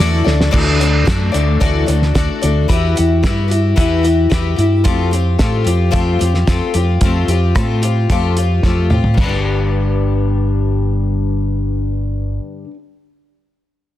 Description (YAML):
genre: folk rock and heartland rock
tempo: 111 BPM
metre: 4/4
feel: straight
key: G major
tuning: A4 = 440 Hz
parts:
  - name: picked twelve-string acoustic guitar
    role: accompaniment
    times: 0.0-12.8 s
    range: G2 to D5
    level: -18 LUFS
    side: left 4 dB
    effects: none
  - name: fingered electric bass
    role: bass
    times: 0.0-12.4 s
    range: G1 to A2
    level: -16 LUFS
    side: equal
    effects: none
  - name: cloth-damped thuddy drum kit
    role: drums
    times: 0.3-9.3 s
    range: china cymbal, crash cymbal, hi-hat, kick drum, rim click, snare drum, toms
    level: -17 LUFS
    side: right 1 dB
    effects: none
room: little or no reverb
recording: dense, heavily limited modern master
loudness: -13 LUFS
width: side -13 dB against mid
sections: 0.5-9.2 A section; 9.2-13.5 B section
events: drum fill 0.3, 8.6-9.2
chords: 0.0 Dadd9; 2.7 Emadd9; 4.8 Fadd9; 9.2 G